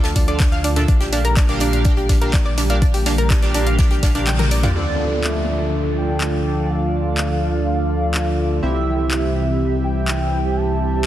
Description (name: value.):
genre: progressive house.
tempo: 124 BPM.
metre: 4/4.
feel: straight.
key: D minor.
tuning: A4 = 439 Hz.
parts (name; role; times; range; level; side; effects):
airy breathy pad; sustained chords; 0.0-11.1 s; C3 to A4; -26 LUFS; equal; chorus, sidechain pumping.
analog pluck; arpeggios; 0.0-4.7 s; D4 to A5; -24 LUFS; equal; chorus, sidechain pumping, digital delay.
round analog bass; bass; 0.0-11.1 s; Bb1 to D2; -22 LUFS; equal; sidechain pumping.
house drum kit; drums; 0.0-10.2 s; handclaps, hi-hat, toms; -26 LUFS; left 1 dB; none.
unplugged drum kit; drums; 0.0-4.7 s; hi-hat, snare drum; -32 LUFS; right 2 dB; high-pass filter on hats, high-pass filter on snare, high-pass filter on room.
electronic kick drum; drums; 0.2-4.1 s; none; -16 LUFS; equal; overdrive.
chorused polysynth; stabs; 0.3-11.1 s; Bb2 to G5; -23 LUFS; right 2 dB; phaser, sidechain pumping, digital delay.
warm velvety synth lead; melody; 4.8-11.1 s; D5 to A5; -27 LUFS; equal; chorus, digital delay.
downlifter; sound effects; 4.8-8.6 s; none; -32 LUFS; left 1 dB; none.
room: light reverb.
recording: dense, heavily limited modern master.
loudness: -16 LUFS.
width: side -12 dB against mid.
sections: 0.0-4.8 A section; 4.8-11.1 B section.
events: kick drops out 4.3-4.8; drum fill 4.3-4.8; band accent 4.3.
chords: 0.0 Dm; 0.9 Bb6; 4.8 Dm; 8.6 C.